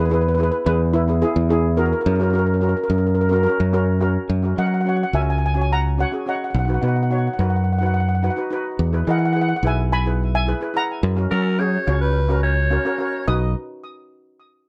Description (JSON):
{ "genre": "calypso", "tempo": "107 BPM", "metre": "4/4", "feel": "straight", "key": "unclear", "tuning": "A4 = 441 Hz", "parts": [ { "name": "steel pan", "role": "melody", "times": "0.0-13.5 s", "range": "E4 to D#6", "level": "-26 LUFS", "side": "equal", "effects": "digital delay" }, { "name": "steel pan", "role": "accompaniment", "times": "0.0-13.5 s", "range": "B3 to C#5", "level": "-29 LUFS", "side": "equal", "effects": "none" }, { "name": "fingered electric bass", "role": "bass", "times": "0.0-13.5 s", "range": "B1 to F#3", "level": "-21 LUFS", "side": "equal", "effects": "none" }, { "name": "growling alto saxophone", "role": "second line", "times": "11.3-13.5 s", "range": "A#4 to D#5", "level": "-26 LUFS", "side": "equal", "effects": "none" } ], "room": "light reverb", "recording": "none", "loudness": "-20 LUFS", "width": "mono", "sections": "0.0-4.3 A section; 4.3-13.3 B section; 13.3-14.7 C section", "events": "none", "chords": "0.0 E; 2.1 F#; 6.5 B; 8.8 E; 11.0 F#; 13.3 B", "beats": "0.38 0.94 1.50 | 2.06 2.62 3.18 3.75 | 4.31 4.87 5.43 5.99 | 6.55 7.11 7.67 8.23 | 8.79 9.35 9.91 10.47 | 11.04 11.60 12.15 12.71 | 13.28" }